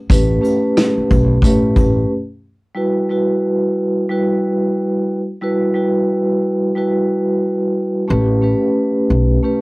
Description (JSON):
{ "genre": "hip hop, boom-bap hip-hop", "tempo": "90 BPM", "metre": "4/4", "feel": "swing 62% on 16ths", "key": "E dorian", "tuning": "A4 = 440 Hz", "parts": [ { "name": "vibraphone with soft mallets", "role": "accompaniment", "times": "0.1-9.6 s", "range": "G3 to B4", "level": "-16 LUFS", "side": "equal", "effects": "cassette tape, high-pass filter, low-pass filter" }, { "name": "upright bass", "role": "bass", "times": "0.1-2.0, 8.1-9.4 s", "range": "A1 to A2", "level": "-16 LUFS", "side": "equal", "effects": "tube saturation" }, { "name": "vintage drum kit", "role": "drums", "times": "0.1-2.0 s", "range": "hi-hat, kick drum, rim click, shaker, snare drum", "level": "-16 LUFS", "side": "equal", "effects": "none" } ], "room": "little or no reverb", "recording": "home recording on cassette", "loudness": "-14 LUFS", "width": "side -23 dB against mid", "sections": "0.0-2.8 A section; 2.8-9.6 B section", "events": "break 2.1-2.8", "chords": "0.0 A9; 2.8 Emadd9; 8.1 A9" }